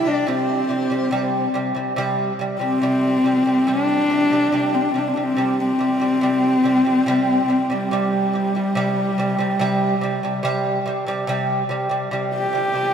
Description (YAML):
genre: mongolian traditional, Mongolian folk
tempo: 71 BPM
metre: 4/4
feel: straight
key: unclear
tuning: A4 = 440 Hz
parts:
  - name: dark horsehead fiddle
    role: melody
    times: 0.0-12.9 s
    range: G3 to G4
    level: -19 LUFS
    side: left 1 dB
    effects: none
  - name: mellow hollow dizi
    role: second line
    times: 0.0-1.6 s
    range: C5 to D5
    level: -29 LUFS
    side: left 2 dB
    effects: none
  - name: lute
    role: arpeggios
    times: 0.0-12.9 s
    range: C3 to G3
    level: -22 LUFS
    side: right 2 dB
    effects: none
room: wet huge ambient reverb, RT60 4.3 s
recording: heard from further back in the room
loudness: -18 LUFS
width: side -8 dB against mid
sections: 0.0-2.0 A section; 2.0-12.9 B section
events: none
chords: 0.0 C5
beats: 0.27 1.12 | 1.97 2.82 3.67 4.52 | 5.37 6.21 7.06 7.91 | 8.75 9.60 10.44 11.28 | 12.13